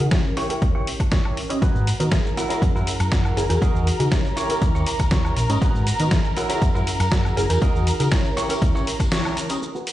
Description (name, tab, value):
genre	filtered disco house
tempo	120 BPM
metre	4/4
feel	straight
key	unclear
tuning	A4 = 440 Hz
part	funky polysynth comp	accompaniment	0.0-9.6 s	B3 to D#5	-27 LUFS	equal	chorus, phaser, sidechain pumping, low-pass filter
part	hollow-body short-scale fingered electric bass	bass	0.0-8.7 s	F#1 to D#3	-22 LUFS	equal	sidechain pumping, low-pass filter
part	dusty soul sampler-style drum kit	drums	0.0-9.9 s	hi-hat, shaker, snare drum, woodblock	-27 LUFS	left 1 dB	none
part	clean electric guitar	riff	0.1-9.9 s	D#4 to C#5	-30 LUFS	right 2 dB	sidechain pumping, low-pass filter
part	electronic kick drum	drums	0.1-9.1 s	none	-21 LUFS	equal	overdrive
part	muted chamber string section	sustained chords	1.6-9.9 s	A#4 to A#5	-30 LUFS	equal	sidechain pumping, low-pass filter
part	tambourine	percussion	1.6-9.6 s	none	-42 LUFS	equal	none
room	light reverb, digital ambience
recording	played on a big sound system in a bare room, large studio reverb, nothing above 10.5 kHz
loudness	-18 LUFS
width	side -14 dB against mid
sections	0.0-9.6 A section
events	filter sweep 0.0-9.6; break 9.1-9.6; band accent 9.1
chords	0.4 D#7b9; 1.6 G#m7; 2.4 F#7; 3.6 Emaj9#11; 4.4 D#7b9; 5.6 G#m7; 6.4 F#7; 7.6 Emaj9#11; 8.4 D#7b9